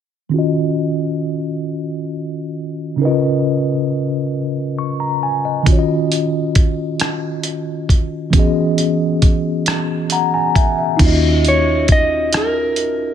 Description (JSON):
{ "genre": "slow six-eight R&B", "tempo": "45 BPM (dotted quarters)", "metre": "6/8", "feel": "straight", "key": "Eb minor", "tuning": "A4 = 440 Hz", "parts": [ { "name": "mellow tine electric piano", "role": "accompaniment", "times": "0.3-13.1 s", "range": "Db3 to Db6", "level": "-17 LUFS", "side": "left 1 dB", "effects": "medium stereo tremolo, low-pass filter" }, { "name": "dusty soul sampler-style drum kit", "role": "drums", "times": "5.7-13.0 s", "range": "crash cymbal, hi-hat, kick drum, rim click", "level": "-15 LUFS", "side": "equal", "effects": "none" }, { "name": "fingered electric bass", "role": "bass", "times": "11.0-13.1 s", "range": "Eb2", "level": "-18 LUFS", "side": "equal", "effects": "none" }, { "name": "mellow electric guitar", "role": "melody", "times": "11.5-13.1 s", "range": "Bb4 to Eb5", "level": "-17 LUFS", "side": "right 1 dB", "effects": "spring reverb, slapback echo" } ], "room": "light reverb", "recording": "none", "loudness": "-15 LUFS", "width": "side -9 dB against mid", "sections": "0.3-11.0 A section; 11.0-13.1 B section", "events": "filter sweep on tine electric piano 0.3-11.0; tine electric piano fill 9.7-11.0", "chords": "0.3 Ebm9; 3.0 Db13; 5.7 Ebm9; 8.3 Emaj13; 11.0 Ebm9", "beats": "| 0.33 1.66 | 3.00 4.33 | 5.66 7.00 | 8.33 9.66 | 11.00 12.33" }